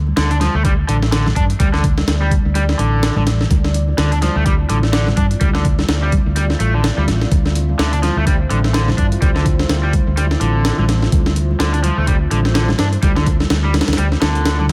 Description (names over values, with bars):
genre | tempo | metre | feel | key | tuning
breakbeat, breaks | 126 BPM | 4/4 | swing 58% on 16ths | unclear | A4 = 440 Hz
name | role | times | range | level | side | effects
deep dark ambient pad | sustained chords | 1.6-14.7 s | C4 to D5 | -30 LUFS | equal | chorus, built-in reverb, vintage 12-bit sampler grit, sidechain pumping
fingered electric bass | bass | 0.0-14.7 s | A1 to G2 | -19 LUFS | equal | none
congas | percussion | 0.1-14.7 s | none | -28 LUFS | equal | analog delay
crunchy overdriven guitar | riff | 0.2-14.6 s | D3 to D4 | -24 LUFS | equal | analog delay
breakbeat sampler-style drum kit | drums | 0.2-14.7 s | hi-hat, kick drum, snare drum | -20 LUFS | equal | analog delay
room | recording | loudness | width
light reverb | echo-heavy mix | -16 LUFS | mono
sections
0.0-14.7 A section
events
none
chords
0.0 Dm9